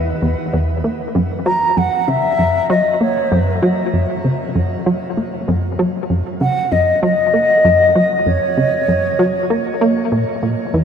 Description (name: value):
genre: ambient, sequencer-driven space music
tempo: 97 BPM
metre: 4/4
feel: straight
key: unclear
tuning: A4 = 440 Hz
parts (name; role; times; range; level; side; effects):
- breathy mellow wooden flute; melody; 0.0-10.1 s; B4 to A#5; -17 LUFS; left 1 dB; shimmer reverb, ping-pong delay
- plucky analog bass; riff; 0.0-10.8 s; E2 to A#3; -17 LUFS; equal; analog chorus, shimmer reverb, ping-pong delay
room: wet huge ambient reverb, RT60 9.0 s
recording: none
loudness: -14 LUFS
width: side -7 dB against mid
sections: 0.0-10.8 A section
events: filter sweep on analog synth bass 0.0-10.8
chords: 0.0 E5; 0.8 F#